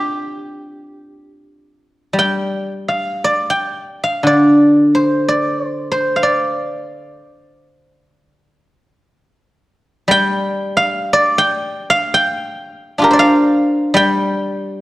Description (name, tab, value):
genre	chinese traditional, Chinese solo plucked strings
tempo	60 BPM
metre	4/4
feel	uneven beats, rubato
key	G yu mode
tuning	A4 = 440 Hz
part	guzheng	solo	0.0-14.8 s	D3 to G5	-13 LUFS	equal	none
room	moderate scoring stage reverb, RT60 1.7 s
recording	worn, warbling old tape, cassette tape, warbly pitch drift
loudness	-13 LUFS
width	side -17 dB against mid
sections	0.0-2.1 A section; 2.1-14.8 B section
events	none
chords	none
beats	0.99 | 2.14 3.20 4.24 5.24 | 6.21 7.18 8.16 9.13 | 10.11 11.11 12.13 13.17 | 14.21